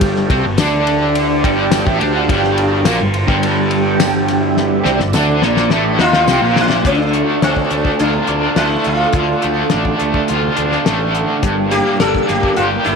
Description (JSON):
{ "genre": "psychedelic rock", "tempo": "105 BPM", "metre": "4/4", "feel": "straight", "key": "D minor", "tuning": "A4 = 440 Hz", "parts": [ { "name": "string machine, cellos", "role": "sustained chords", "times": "0.0-13.0 s", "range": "A4 to C6", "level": "-22 LUFS", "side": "right 10 dB", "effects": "ensemble chorus" }, { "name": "crunchy overdriven guitar", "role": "riff", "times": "0.0-13.0 s", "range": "G2 to G4", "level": "-16 LUFS", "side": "equal", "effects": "harmonic tremolo" }, { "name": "fuzz picked electric bass", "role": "bass", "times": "0.0-13.0 s", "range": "G1 to Eb2", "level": "-21 LUFS", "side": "equal", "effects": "overdrive" }, { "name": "tanpura", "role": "drone", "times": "0.0-13.0 s", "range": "D2 to D3", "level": "-26 LUFS", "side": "right 1 dB", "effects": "none" }, { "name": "damped 70s drum kit", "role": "drums", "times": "0.0-13.0 s", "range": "hi-hat, kick drum, ride cymbal, snare drum", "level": "-20 LUFS", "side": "left 4 dB", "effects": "none" }, { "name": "tambourine", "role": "percussion", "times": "0.6-6.4 s", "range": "none", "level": "-31 LUFS", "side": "right 14 dB", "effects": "none" }, { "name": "sitar", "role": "melody", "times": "6.0-13.0 s", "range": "C4 to A4", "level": "-18 LUFS", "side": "left 1 dB", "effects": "tape echo" } ], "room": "moderate echo chamber reverb, RT60 2.3 s", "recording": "1960s-style stereo", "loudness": "-12 LUFS", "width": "side -5 dB against mid", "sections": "0.0-6.9 A section; 6.9-13.0 B section", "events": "string machine solo 0.0-6.9; drum fill 4.6-6.9", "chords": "0.0 G5; 6.9 Dm; 11.4 Gm" }